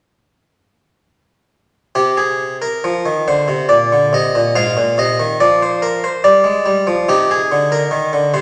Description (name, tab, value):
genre	classical, baroque-style suite movement for harpsichord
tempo	70 BPM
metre	3/4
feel	rubato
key	C minor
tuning	A4 = 438 Hz
part	harpsichord	solo	2.0-8.4 s	Ab2 to F5	-15 LUFS	equal	none
room	wet recital hall reverb, RT60 1.6 s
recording	none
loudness	-15 LUFS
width	mono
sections	1.9-8.4 A section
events	none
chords	1.9 C5; 3.7 Bbadd11; 4.6 F5; 6.3 G5; 7.1 Cm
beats	| 1.94 2.84 3.70 | 4.56 5.42 6.26 | 7.09 7.92